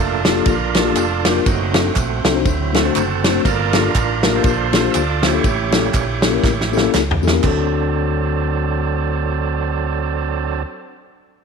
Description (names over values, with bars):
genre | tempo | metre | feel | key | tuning
uptempo gospel | 120 BPM | 4/4 | swing 58% on 8ths | unclear | A4 = 442 Hz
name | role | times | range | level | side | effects
mellow tine electric piano | accompaniment | 0.0-10.7 s | D2 to C5 | -21 LUFS | left 14 dB | medium stereo tremolo
overdriven tonewheel organ | sustained chords | 0.0-10.6 s | F#3 to E5 | -22 LUFS | right 11 dB | slow rotary speaker
fingered electric bass | bass | 0.0-10.6 s | F1 to E2 | -22 LUFS | right 1 dB | none
natural country drum kit | drums | 0.2-7.6 s | kick drum, ride cymbal, snare drum, splash cymbal, toms | -18 LUFS | right 1 dB | none
tambourine and handclaps | percussion | 0.3-7.7 s | none | -30 LUFS | right 5 dB | none
room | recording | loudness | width
moderate echo chamber reverb, RT60 1.8 s, small room ambience | 1960s-style stereo with parts hard left and right | -15 LUFS | side -5 dB against mid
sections
0.0-7.4 A section; 7.4-11.4 B section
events
tonewheel organ solo 0.0-7.4; drum fill 6.4-7.4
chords
0.0 Gm9; 1.5 D7b9/F#; 2.5 D7; 3.5 Gm9; 5.4 A7b9; 7.4 D7